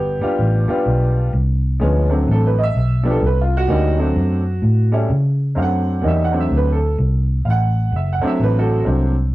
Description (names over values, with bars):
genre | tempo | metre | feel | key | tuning
electric blues shuffle | 128 BPM | 4/4 | swing 64% on 8ths | D mixolydian | A4 = 440 Hz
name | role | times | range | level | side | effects
clear upright piano | accompaniment | 0.0-9.1 s | F3 to F#5 | -20 LUFS | right 1 dB | none
vintage muted fingered electric bass | bass | 0.0-9.3 s | F#1 to C#3 | -16 LUFS | equal | none
room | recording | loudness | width
moderate studio reverb, RT60 0.6 s | rough rehearsal-room recording, tube saturation | -15 LUFS | side -17 dB against mid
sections
0.0-5.6 A section; 5.6-9.3 A section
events
none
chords
0.0 G7; 1.8 D7; 2.7 G7; 3.7 D7; 4.6 A7; 5.6 D7